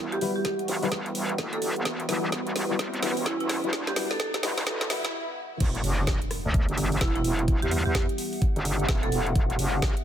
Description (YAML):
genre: bass house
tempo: 128 BPM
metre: 4/4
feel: swing 62% on 16ths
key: E minor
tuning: A4 = 440 Hz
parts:
  - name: sweeping resonant pad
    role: sustained chords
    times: 0.0-10.0 s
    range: E3 to F#5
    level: -36 LUFS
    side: right 1 dB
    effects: chorus, sidechain pumping
  - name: metallic wobble bass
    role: bass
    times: 0.0-9.9 s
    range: E1 to E2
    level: -28 LUFS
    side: equal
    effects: chorus, overdrive, sidechain pumping, high-pass filter
  - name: riser, swell and impact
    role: sound effects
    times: 0.6-7.5 s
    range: none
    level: -36 LUFS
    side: equal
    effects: none
  - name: warbly tape-like pad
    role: texture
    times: 0.1-10.0 s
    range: G3 to F#5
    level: -38 LUFS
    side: equal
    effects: chorus, built-in reverb, phaser, sidechain pumping
  - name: marimba with medium hard mallets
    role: melody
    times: 0.1-9.7 s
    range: E4 to A4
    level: -33 LUFS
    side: right 2 dB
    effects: tape echo
  - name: garage drum kit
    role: drums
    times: 0.1-10.0 s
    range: crash cymbal, hi-hat, rim click, snare drum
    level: -32 LUFS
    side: equal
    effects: none
  - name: dark baby grand piano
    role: stabs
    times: 0.2-5.0 s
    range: G3 to B4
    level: -33 LUFS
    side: left 5 dB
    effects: sidechain pumping, low-pass filter, tape echo
  - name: electronic kick drum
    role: drums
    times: 0.4-9.9 s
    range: none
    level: -26 LUFS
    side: equal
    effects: high-pass filter on kick, high-pass filter on room
room: digital ambience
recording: high-pass filter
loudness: -24 LUFS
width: side -10 dB against mid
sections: 0.0-5.6 A section; 5.6-10.0 B section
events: build-up 0.0-5.6; drum fill 0.0-5.1; filter sweep 0.0-5.6; riser 0.6-5.1; swell 4.7-5.6; break 5.1-5.6; drop 5.6-10.0; impact 5.6-7.5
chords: 0.0 Emadd9